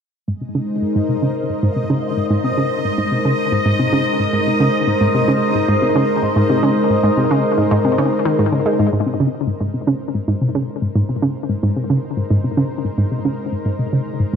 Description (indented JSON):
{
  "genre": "ambient, sequencer-driven space music",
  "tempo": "111 BPM",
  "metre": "4/4",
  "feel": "straight",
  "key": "Ab major",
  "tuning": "A4 = 440 Hz",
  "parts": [
    { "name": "lush unison pad", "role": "sustained chords", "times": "0.3-14.4 s", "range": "Ab3 to C5", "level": "-20 LUFS", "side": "equal", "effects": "chorus" },
    { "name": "analog pluck", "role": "riff", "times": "0.3-14.4 s", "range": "Ab2 to Ab3", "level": "-18 LUFS", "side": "equal", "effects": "chorus, ping-pong delay" },
    { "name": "bubbling stepped-filter texture", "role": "texture", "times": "0.8-8.9 s", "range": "Eb5", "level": "-24 LUFS", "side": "right 1 dB", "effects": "chorus, built-in reverb" }
  ],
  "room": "wet plate reverb, RT60 2.6 s",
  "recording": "dreamy mix soaked in reverb",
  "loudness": "-15 LUFS",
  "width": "side -7 dB against mid",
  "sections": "0.3-8.9 A section; 8.9-14.4 B section",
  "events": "filter sweep on synth arpeggio sound 0.3-8.9, 8.9-14.4",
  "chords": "0.3 Ab",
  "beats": "| 0.28 0.82 1.36 1.90 | 2.44 2.98 3.52 4.06 | 4.60 5.14 5.68 6.23 | 6.77 7.31 7.85 8.39 | 8.93 9.47 10.01 10.55 | 11.09 11.63 12.17 12.71 | 13.25 13.79 14.33"
}